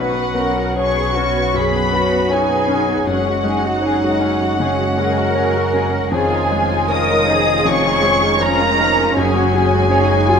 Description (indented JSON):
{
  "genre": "cinematic",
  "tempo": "79 BPM",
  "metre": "4/4",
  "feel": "rubato",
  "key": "unclear",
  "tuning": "A4 = 440 Hz",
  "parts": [
    { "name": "muted studio violin section", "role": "melody", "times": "0.0-10.4 s", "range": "F#5 to Eb6", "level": "-20 LUFS", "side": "left 1 dB", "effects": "none" },
    { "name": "flute section", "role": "second line", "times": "0.0-10.4 s", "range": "F#4 to Eb5", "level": "-23 LUFS", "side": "equal", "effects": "none" },
    { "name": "muted studio violin section", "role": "second line", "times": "0.0-10.4 s", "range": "Eb4 to B4", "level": "-25 LUFS", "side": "left 4 dB", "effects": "none" },
    { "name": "clear concert grand piano", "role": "accompaniment", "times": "0.0-10.4 s", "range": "B1 to C#5", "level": "-22 LUFS", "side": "left 3 dB", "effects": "none" },
    { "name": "muted studio viola section", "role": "accompaniment", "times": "0.0-10.4 s", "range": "F3 to F4", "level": "-25 LUFS", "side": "right 2 dB", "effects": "none" },
    { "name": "mellow French horn section", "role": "sustained chords", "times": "0.0-10.4 s", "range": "Eb3 to Db4", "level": "-24 LUFS", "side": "left 2 dB", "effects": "none" },
    { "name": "muted studio cello section", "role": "bass", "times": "0.0-10.4 s", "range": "Db4 to B4", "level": "-23 LUFS", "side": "right 2 dB", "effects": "none" },
    { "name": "muted studio double bass section", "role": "bass", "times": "0.0-10.4 s", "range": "F1 to B1", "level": "-24 LUFS", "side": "right 4 dB", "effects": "none" }
  ],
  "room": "moderate scoring stage reverb, RT60 1.7 s",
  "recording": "none",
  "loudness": "-14 LUFS",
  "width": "side -6 dB against mid",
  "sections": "0.0-10.4 A section",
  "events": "none",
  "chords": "0.0 Bsus2; 3.1 Gbsus2; 6.1 Dbadd9/F; 9.2 Gbsus2"
}